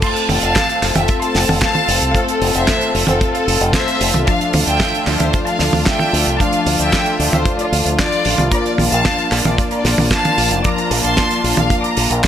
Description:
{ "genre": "italo disco", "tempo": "113 BPM", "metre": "4/4", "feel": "straight", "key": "F major", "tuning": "A4 = 442 Hz", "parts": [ { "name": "clear studio violin section", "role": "melody", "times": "0.0-12.3 s", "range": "F4 to D6", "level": "-19 LUFS", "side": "equal", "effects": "tape echo" }, { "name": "warm chamber string section", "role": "sustained chords", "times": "0.0-12.3 s", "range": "A3 to A4", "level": "-22 LUFS", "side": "left 1 dB", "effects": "none" }, { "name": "analog synth brass", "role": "stabs", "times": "0.0-12.3 s", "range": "F3 to A4", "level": "-22 LUFS", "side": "left 2 dB", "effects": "chorus" }, { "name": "damped 70s drum kit", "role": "drums", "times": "0.0-12.3 s", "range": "crash cymbal, handclaps, hi-hat, snare drum, toms", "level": "-19 LUFS", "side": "right 2 dB", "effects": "none" }, { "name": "kick drum", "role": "drums", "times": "0.0-12.3 s", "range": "none", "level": "-19 LUFS", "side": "equal", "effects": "none" }, { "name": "fingered electric bass with an envelope filter", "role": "bass", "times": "0.3-12.2 s", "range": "F1 to D2", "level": "-20 LUFS", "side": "equal", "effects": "tube saturation" } ], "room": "light reverb, small room ambience", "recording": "none", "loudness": "-13 LUFS", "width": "side -10 dB against mid", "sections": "0.0-12.3 A section", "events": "none", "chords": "0.0 F; 4.3 Dm; 8.5 Bb" }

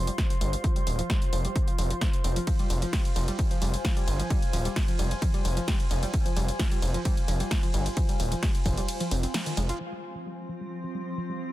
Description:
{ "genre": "driving peak-time techno", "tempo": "131 BPM", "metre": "4/4", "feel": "straight", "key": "F minor", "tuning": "A4 = 440 Hz", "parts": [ { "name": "warbly dusty pluck", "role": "riff", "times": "0.0-11.4 s", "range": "Eb3 to F4", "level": "-35 LUFS", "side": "equal", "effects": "chorus, tube saturation, sidechain pumping, tape echo" }, { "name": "gritty driven synth bass", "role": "bass", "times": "0.0-9.7 s", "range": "Eb1 to G1", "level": "-28 LUFS", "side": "equal", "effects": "sidechain pumping" }, { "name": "warbly tape-like pad", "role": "texture", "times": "0.0-11.5 s", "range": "F4 to C6", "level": "-36 LUFS", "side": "equal", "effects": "chorus, built-in reverb, sidechain pumping" }, { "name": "techno drum kit", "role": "drums", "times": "0.1-9.8 s", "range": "hi-hat, ride cymbal, snare drum", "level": "-34 LUFS", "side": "equal", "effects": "overdrive, sidechain pumping on hats, low-pass filter on hats, low-pass filter on snare, sidechain pumping on cymbals, low-pass filter on cymbals" }, { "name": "electronic kick drum", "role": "drums", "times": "0.2-8.8 s", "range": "none", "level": "-26 LUFS", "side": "equal", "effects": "overdrive" }, { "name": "swarming drone", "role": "drone", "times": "10.1-11.5 s", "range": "F3 to C4", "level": "-36 LUFS", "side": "right 1 dB", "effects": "built-in reverb, sidechain pumping" } ], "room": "little or no reverb", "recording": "dense, heavily limited modern master", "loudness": "-25 LUFS", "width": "side -15 dB against mid", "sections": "0.0-9.8 A section; 9.8-11.5 B section", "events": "drop 0.0-9.8; kick drops out 8.9-9.8; band accent 9.3; filter sweep on synth arpeggio sound 9.8-11.5", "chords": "0.0 F5" }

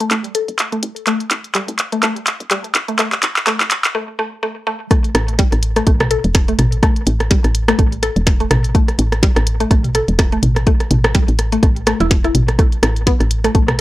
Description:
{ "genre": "minimal techno", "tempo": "125 BPM", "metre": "4/4", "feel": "swing 56% on 16ths", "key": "unclear", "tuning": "A4 = 439 Hz", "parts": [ { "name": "mallet-like synth pluck", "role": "riff", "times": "0.0-13.6 s", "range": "G3 to A4", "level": "-21 LUFS", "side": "left 1 dB", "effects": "chorus, phaser, sidechain pumping, analog delay" }, { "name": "woody FM bass", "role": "bass", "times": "0.0-13.8 s", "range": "E1 to A1", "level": "-18 LUFS", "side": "equal", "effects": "sidechain pumping, high-pass filter" }, { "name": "minimal click drum kit", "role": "drums", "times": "0.0-13.8 s", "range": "handclaps, hi-hat, snare drum", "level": "-18 LUFS", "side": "equal", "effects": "high-pass filter on hats, small room ambience, high-pass filter on snare" }, { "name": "electronic kick drum", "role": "drums", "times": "4.9-13.7 s", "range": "none", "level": "-14 LUFS", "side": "equal", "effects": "small room ambience" }, { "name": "booming analog drum machine", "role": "percussion", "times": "4.9-13.8 s", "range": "rim click, toms", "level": "-18 LUFS", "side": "equal", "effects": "overdrive, small room ambience, analog delay" } ], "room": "light reverb", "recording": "dry, gritty hardware recording, high-pass filter", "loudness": "-13 LUFS", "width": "side -16 dB against mid", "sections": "0.0-4.9 A section; 4.9-13.8 B section", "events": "build-up 0.0-4.9; drum fill 0.0-3.9; filter sweep on synth arpeggio sound 0.0-4.9; break 3.9-4.9; drop 4.9-13.8", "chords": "0.0 A5" }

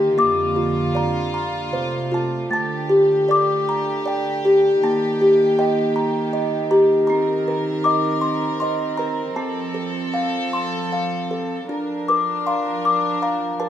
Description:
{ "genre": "children's music, lullaby", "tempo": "78 BPM", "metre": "3/4", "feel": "straight", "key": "Bb major", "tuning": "A4 = 442 Hz", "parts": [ { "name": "music box", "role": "melody", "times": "0.0-13.7 s", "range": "A3 to D6", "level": "-19 LUFS", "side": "left 1 dB", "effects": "none" }, { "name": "dark studio string section", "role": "sustained chords", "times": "0.0-13.7 s", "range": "F2 to Bb4", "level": "-25 LUFS", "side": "right 2 dB", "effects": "none" } ], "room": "moderate stone room reverb, RT60 0.9 s", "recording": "band playing live in one room", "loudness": "-18 LUFS", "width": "side -10 dB against mid", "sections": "0.0-11.7 A section; 11.7-13.7 B section", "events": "none", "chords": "0.2 Bb/F; 1.7 F; 2.5 Gsus2; 4.8 Eb; 7.1 Cm7/Eb; 9.4 F; 11.7 Bb" }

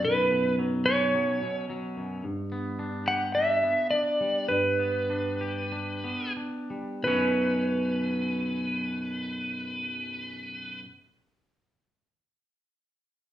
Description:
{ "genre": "rock", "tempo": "87-109 BPM", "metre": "4/4", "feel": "straight", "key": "B minor", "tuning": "A4 = 444 Hz", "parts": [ { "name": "clean lap steel guitar", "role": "melody", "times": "0.0-10.8 s", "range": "B4 to F#5", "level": "-27 LUFS", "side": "right 1 dB", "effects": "none" }, { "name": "twangy electric guitar", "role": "arpeggios", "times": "0.0-10.9 s", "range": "B1 to G4", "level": "-30 LUFS", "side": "equal", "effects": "none" } ], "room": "wet large studio reverb, RT60 0.8 s", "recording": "band playing live in one room", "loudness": "-26 LUFS", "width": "side -12 dB against mid", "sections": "0.0-7.0 A section; 7.0-12.6 B section", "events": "slowing down 2.2-7.0", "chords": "0.0 Bsus2; 2.2 G; 7.0 Bsus2" }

